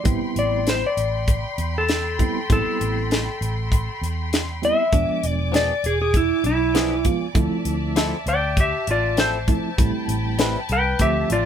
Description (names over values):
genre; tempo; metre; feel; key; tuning
straight-eighth soul blues; 99 BPM; 4/4; swing 53% on 16ths; A minor; A4 = 437 Hz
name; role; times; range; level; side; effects
reed electric piano; accompaniment; 0.0-11.5 s; F3 to E5; -26 LUFS; right 4 dB; overdrive, fast tremolo
rich symphonic string section; sustained chords; 0.0-11.5 s; F4 to D6; -31 LUFS; left 2 dB; none
vintage muted fingered electric bass; bass; 0.1-11.5 s; E1 to E2; -26 LUFS; equal; none
tight funk drum kit; drums; 0.1-11.5 s; hi-hat, kick drum, snare drum; -21 LUFS; equal; none
clean lap steel guitar; melody; 0.4-11.5 s; E4 to G5; -22 LUFS; left 1 dB; none
direct-recorded clean electric guitar; stabs; 5.5-10.6 s; F3 to B4; -26 LUFS; left 4 dB; none
room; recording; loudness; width
little or no reverb; band playing live in one room; -19 LUFS; side -9 dB against mid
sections
0.0-11.5 A section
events
electric slide guitar solo 0.0-11.5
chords
0.1 Am9; 4.9 E7b9; 7.4 Dm9; 9.8 Am9